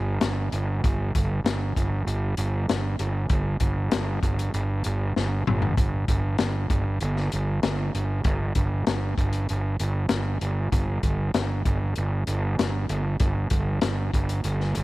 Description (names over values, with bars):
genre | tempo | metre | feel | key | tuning
psychedelic rock | 97 BPM | 4/4 | straight | unclear | A4 = 439 Hz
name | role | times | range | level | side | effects
fuzz fingered electric bass | bass | 0.0-14.8 s | G1 | -25 LUFS | right 1 dB | overdrive
vintage drum kit | drums | 0.2-14.8 s | hi-hat, kick drum, snare drum, toms | -26 LUFS | left 1 dB | none
room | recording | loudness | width
little or no reverb | 1960s-style stereo | -23 LUFS | side -18 dB against mid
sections
0.0-14.8 A section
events
drum fill 5.1-5.8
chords
none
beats
0.21 | 0.82 1.44 2.06 2.68 | 3.29 3.91 4.53 5.15 | 5.76 6.38 7.00 7.62 | 8.24 8.86 9.48 10.10 | 10.72 11.34 11.96 12.58 | 13.20 13.82 14.45